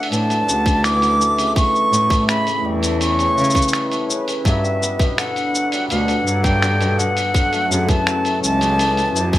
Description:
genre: folktronica.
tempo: 83 BPM.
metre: 4/4.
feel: straight.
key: unclear.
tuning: A4 = 436 Hz.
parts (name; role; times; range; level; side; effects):
bright concert flute; melody; 0.0-9.4 s; E5 to D6; -20 LUFS; equal; tape echo.
warm analog pad; sustained chords; 0.0-9.4 s; F#3 to F#5; -26 LUFS; equal; chorus.
hammered dulcimer; arpeggios; 0.0-9.4 s; B2 to E4; -24 LUFS; left 2 dB; tape echo.
lo-fi sampler-style drum kit; drums; 0.0-9.4 s; finger snaps, hi-hat, shaker; -24 LUFS; equal; none.
warm cello; bass; 0.1-9.4 s; C#2 to C#3; -21 LUFS; equal; none.
electronic kick drum; drums; 0.7-9.4 s; none; -18 LUFS; equal; none.
room: moderate studio reverb, RT60 0.5 s.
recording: lossy compression artefacts.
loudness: -15 LUFS.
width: side -14 dB against mid.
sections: 0.0-9.4 A section.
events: none.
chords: 0.0 Dmaj9; 1.6 A7; 4.5 Gmaj7; 7.3 F#m7.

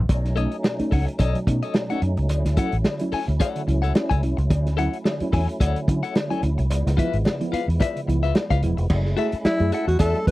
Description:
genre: funk.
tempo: 109 BPM.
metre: 4/4.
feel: swing 56% on 16ths.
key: F# dorian.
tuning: A4 = 439 Hz.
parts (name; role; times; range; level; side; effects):
vintage muted fingered electric bass; bass; 0.0-10.3 s; E1 to D3; -22 LUFS; equal; none.
percussive tonewheel organ; sustained chords; 0.1-10.3 s; E#3 to E4; -33 LUFS; right 1 dB; overdrive, chorus vibrato, slow rotary speaker.
mellow reed electric piano; stabs; 0.1-10.3 s; B2 to G#4; -28 LUFS; right 2 dB; fast tremolo.
vintage drum kit; drums; 0.1-10.3 s; crash cymbal, hi-hat, kick drum, snare drum; -22 LUFS; equal; none.
cowbell; percussion; 0.1-10.1 s; none; -34 LUFS; left 4 dB; none.
clean electric guitar; accompaniment; 0.4-10.3 s; E#4 to G#5; -28 LUFS; left 8 dB; tremolo.
breathy alto saxophone; melody; 9.4-10.3 s; E4 to B4; -22 LUFS; left 1 dB; slapback echo.
room: little or no reverb.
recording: dry, close 1970s-style studio recording.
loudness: -20 LUFS.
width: side -18 dB against mid.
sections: 0.1-8.9 A section; 8.9-10.3 B section.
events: alto saxophone solo 8.9-10.3.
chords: 0.1 B9; 2.3 Dmaj7; 6.7 C#7#9; 8.9 F#m7.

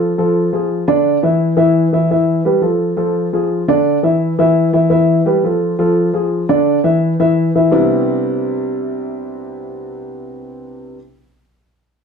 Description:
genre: latin.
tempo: 171 BPM.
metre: 4/4.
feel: straight.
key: C major.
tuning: A4 = 440 Hz.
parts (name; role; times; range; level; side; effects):
dark concert grand piano; solo; 0.0-11.0 s; C3 to E5; -13 LUFS; equal; none.
room: wet studio reverb, RT60 0.7 s.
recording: heard from further back in the room, faint mains hum.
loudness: -12 LUFS.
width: side -6 dB against mid.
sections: 0.0-7.7 A section; 7.7-10.5 B section.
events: none.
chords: 0.0 F; 0.7 Dmadd9; 1.4 N.C.; 2.1 Emadd11; 2.8 F; 3.5 Dmadd9; 4.2 N.C.; 4.9 Emadd11; 5.6 F; 6.3 Dmadd9; 7.0 N.C.; 7.7 Cmaj9.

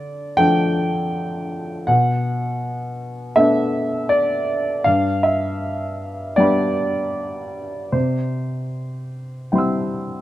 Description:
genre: neoclassical minimalist piano.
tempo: 75-82 BPM.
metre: 4/4.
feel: rubato.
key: unclear.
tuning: A4 = 436 Hz.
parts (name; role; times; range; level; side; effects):
warm baby grand piano; solo; 0.0-10.2 s; G2 to E6; -19 LUFS; equal; none.
room: moderate plate reverb, RT60 2.5 s.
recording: rough home demo mix.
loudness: -18 LUFS.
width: side -14 dB against mid.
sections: 0.0-10.2 A section.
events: none.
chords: 0.0 Dm; 1.9 Bm7; 4.9 G; 7.9 C.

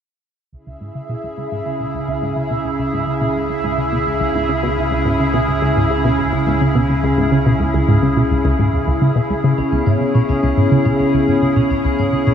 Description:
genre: ambient, sequencer-driven space music.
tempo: 106 BPM.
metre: 4/4.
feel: straight.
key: C# minor.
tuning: A4 = 440 Hz.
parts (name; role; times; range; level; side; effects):
evolving wavetable pad; sustained chords; 1.1-12.3 s; C#3 to G#4; -19 LUFS; equal; chorus, built-in reverb.
tight sequenced synth; riff; 0.5-12.3 s; C#2 to C#3; -18 LUFS; equal; chorus, analog delay.
round analog bass; bass; 0.5-12.3 s; C#2; -27 LUFS; equal; none.
bubbling stepped-filter texture; texture; 0.8-9.6 s; E5; -26 LUFS; right 2 dB; chorus, built-in reverb.
vibraphone with soft mallets; arpeggios; 9.6-12.3 s; B3 to C#5; -19 LUFS; left 3 dB; auto-pan, low-pass filter, analog delay.
room: moderate huge ambient reverb, RT60 8.3 s.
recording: none.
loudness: -14 LUFS.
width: side -8 dB against mid.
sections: 0.5-9.6 A section; 9.6-12.3 B section.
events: fade-in on synth arpeggio sound 0.5-9.6; fade-in on analog synth bass 0.5-9.6; filter sweep on synth arpeggio sound 9.6-12.3.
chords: 0.5 C#m.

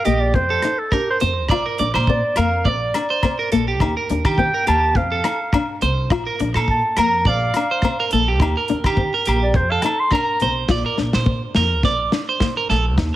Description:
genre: highlife guitar band.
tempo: 104 BPM.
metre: 4/4.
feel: swing 55% on 16ths.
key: Bb major.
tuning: A4 = 440 Hz.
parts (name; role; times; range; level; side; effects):
breathy clarinet; melody; 0.0-10.6 s; G4 to C6; -21 LUFS; equal; none.
electric guitar at the edge of break-up; arpeggios; 0.0-12.8 s; G4 to D5; -22 LUFS; right 5 dB; spring reverb, slapback echo.
nylon-string guitar; accompaniment; 0.1-13.2 s; A3 to F4; -24 LUFS; left 6 dB; none.
upright bass; bass; 0.1-13.1 s; Bb1 to Eb3; -22 LUFS; equal; none.
warm soul drum kit; drums; 0.1-13.1 s; hi-hat, kick drum, rim click, snare drum; -23 LUFS; equal; none.
agogo bells; percussion; 1.5-10.3 s; none; -27 LUFS; left 4 dB; none.
room: light reverb, small room ambience.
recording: none.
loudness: -16 LUFS.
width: side -14 dB against mid.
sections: 0.0-10.7 A section; 10.7-13.2 B section.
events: clarinet solo 0.0-10.7.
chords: 0.4 F5; 1.5 Bb; 3.8 Eb; 5.0 F5; 6.1 Bbmaj7; 8.4 Eb; 9.6 F5; 10.7 Bbmaj7.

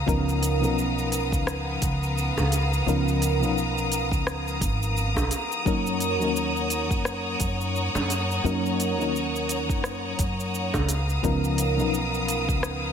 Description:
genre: sunset chillout.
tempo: 86 BPM.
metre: 4/4.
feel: swing 57% on 16ths.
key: F# major.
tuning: A4 = 440 Hz.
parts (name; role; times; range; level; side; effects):
bright studio string section; sustained chords; 0.0-12.9 s; B3 to D#6; -29 LUFS; left 1 dB; none.
upright bass; bass; 0.0-12.9 s; G#1 to F#2; -28 LUFS; right 1 dB; none.
mellow FM electric piano; accompaniment; 0.1-12.9 s; E#3 to A#4; -28 LUFS; left 1 dB; chorus, auto-pan, tape echo.
deep house drum kit; drums; 0.1-12.8 s; hi-hat, rim click, shaker; -32 LUFS; equal; none.
electronic kick drum; drums; 0.1-12.6 s; none; -28 LUFS; right 1 dB; none.
bongos; percussion; 2.4-10.9 s; none; -32 LUFS; right 3 dB; none.
room: moderate lush hall reverb, RT60 1.6 s, small room ambience.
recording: none.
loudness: -23 LUFS.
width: side -8 dB against mid.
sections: 0.0-12.9 A section.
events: none.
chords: 0.0 C#13; 5.7 F#6; 10.9 C#13.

